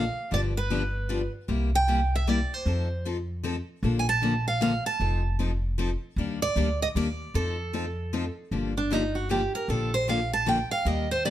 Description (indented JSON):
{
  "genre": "acoustic string swing (jazz manouche)",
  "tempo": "154 BPM",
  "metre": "3/4",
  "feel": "swing 62% on 8ths",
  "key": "unclear",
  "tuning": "A4 = 438 Hz",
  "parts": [
    { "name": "picked steel-string acoustic guitar", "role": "melody", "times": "0.0-11.3 s", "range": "D4 to A5", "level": "-28 LUFS", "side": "right 3 dB", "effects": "none" },
    { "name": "picked steel-string acoustic guitar", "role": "accompaniment", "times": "0.0-11.3 s", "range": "C3 to A4", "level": "-30 LUFS", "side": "left 4 dB", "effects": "none" },
    { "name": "upright bass", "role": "bass", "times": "0.0-11.3 s", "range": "F1 to F2", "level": "-28 LUFS", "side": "equal", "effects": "none" }
  ],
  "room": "light reverb",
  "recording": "none",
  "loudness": "-25 LUFS",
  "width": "side -12 dB against mid",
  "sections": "0.0-8.5 A section; 8.5-11.3 B section",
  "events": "steel-string acoustic guitar solo 8.5-11.3",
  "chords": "0.3 G7; 1.5 C7; 2.7 F7; 3.8 Bbmaj7; 5.0 F7; 6.2 Ebmaj7; 7.3 F7; 8.5 Gm7; 9.7 Bbmaj7",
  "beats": "| 0.31 0.70 1.09 | 1.49 1.88 2.27 | 2.66 3.05 3.44 | 3.83 4.22 4.61 | 5.00 5.39 5.78 | 6.17 6.56 6.95 | 7.34 7.73 8.12 | 8.51 8.90 9.29 | 9.68 10.07 10.46 | 10.86 11.25"
}